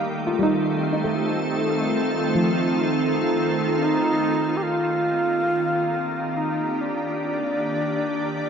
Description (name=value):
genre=ambient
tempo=free time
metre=none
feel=none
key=Eb lydian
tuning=A4 = 438 Hz
part: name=soft additive organ-like pad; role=sustained chords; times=0.0-8.5 s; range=Eb3 to D5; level=-23 LUFS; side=right 1 dB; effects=ensemble chorus, built-in reverb, shimmer reverb
part: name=soft round pluck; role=arpeggios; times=0.0-5.4 s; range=F3 to F5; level=-26 LUFS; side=equal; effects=lush chorus, shimmer reverb, tape echo
part: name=bright reedy wooden-headed alto flute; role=melody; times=3.8-8.5 s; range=D4 to G4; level=-23 LUFS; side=equal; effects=shimmer reverb, tape echo
room=wet huge ambient reverb, RT60 9.2 s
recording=dark, warm production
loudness=-20 LUFS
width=side -7 dB against mid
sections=0.0-4.6 A section; 4.6-8.5 B section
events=none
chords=0.0 F7/Eb; 4.6 Ebmaj7